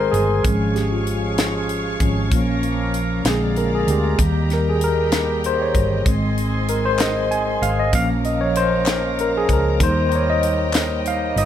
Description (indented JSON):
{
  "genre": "slow gospel",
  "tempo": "64 BPM (dotted quarters)",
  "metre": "6/8",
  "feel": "straight",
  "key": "unclear",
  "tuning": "A4 = 441 Hz",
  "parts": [
    { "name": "tine electric piano", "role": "accompaniment", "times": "0.0-11.5 s", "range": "D3 to Ab5", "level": "-20 LUFS", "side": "left 1 dB", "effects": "medium stereo tremolo" },
    { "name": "bright tonewheel organ", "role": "sustained chords", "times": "0.0-11.5 s", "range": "D3 to Bb4", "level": "-27 LUFS", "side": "right 4 dB", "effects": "slow rotary speaker" },
    { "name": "rich studio string section", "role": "sustained chords", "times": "0.0-11.5 s", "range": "Db4 to Db6", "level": "-31 LUFS", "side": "left 3 dB", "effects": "none" },
    { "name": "hollow-body short-scale fingered electric bass", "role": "bass", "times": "0.0-11.5 s", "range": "G1 to Eb2", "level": "-23 LUFS", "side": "equal", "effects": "none" },
    { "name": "tight funk drum kit", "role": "drums", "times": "0.1-11.5 s", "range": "hi-hat, kick drum, snare drum", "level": "-22 LUFS", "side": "equal", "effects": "none" },
    { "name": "group handclap", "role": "percussion", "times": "7.0-11.0 s", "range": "none", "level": "-30 LUFS", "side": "left 3 dB", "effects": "none" }
  ],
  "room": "moderate large studio reverb, RT60 1.2 s",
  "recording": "none",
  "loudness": "-17 LUFS",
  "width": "side -10 dB against mid",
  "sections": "0.0-11.5 A section",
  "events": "tine electric piano solo 0.0-11.5",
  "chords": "0.4 Db/Ab; 2.3 Bbm; 3.3 Bb7; 4.2 Eb; 6.1 Ab; 7.9 Bbm; 9.8 Eb"
}